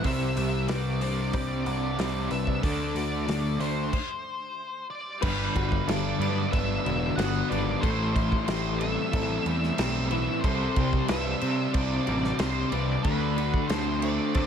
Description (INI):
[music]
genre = rock, shoegaze and dream pop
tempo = 92 BPM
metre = 4/4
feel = straight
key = G major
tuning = A4 = 440 Hz
[part]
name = octave-fuzz lead guitar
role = melody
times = 0.0-14.5 s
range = B4 to F#5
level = -33 LUFS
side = left 1 dB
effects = distortion, digital delay
[part]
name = direct-recorded clean electric guitar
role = arpeggios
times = 0.0-14.5 s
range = E4 to F#5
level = -37 LUFS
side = left 11 dB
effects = lush chorus, digital delay
[part]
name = crunchy overdriven guitar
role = riff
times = 0.0-14.5 s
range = G2 to D4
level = -32 LUFS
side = right 1 dB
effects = tremolo
[part]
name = raw garage guitar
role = riff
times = 0.0-14.5 s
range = A2 to G4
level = -35 LUFS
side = right 11 dB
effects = overdrive, reverse reverb
[part]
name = thick fuzz guitar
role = riff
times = 0.0-14.5 s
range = G2 to F#4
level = -33 LUFS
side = left 10 dB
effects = distortion, lush chorus
[part]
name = fuzz picked electric bass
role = bass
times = 0.0-14.5 s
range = E1 to C3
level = -30 LUFS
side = right 1 dB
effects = overdrive
[part]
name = loose indie drum kit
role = drums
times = 0.0-14.5 s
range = crash cymbal, hi-hat, kick drum, snare drum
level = -31 LUFS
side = right 1 dB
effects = none
[sound]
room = small room ambience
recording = none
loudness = -24 LUFS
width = side -8 dB against mid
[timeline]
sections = 0.0-5.2 A section; 5.2-14.5 B section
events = stop 3.9-5.2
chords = 0.0 Csus2; 2.6 D7; 5.2 Gmaj7; 7.8 Am7; 10.4 Csus2; 13.0 D7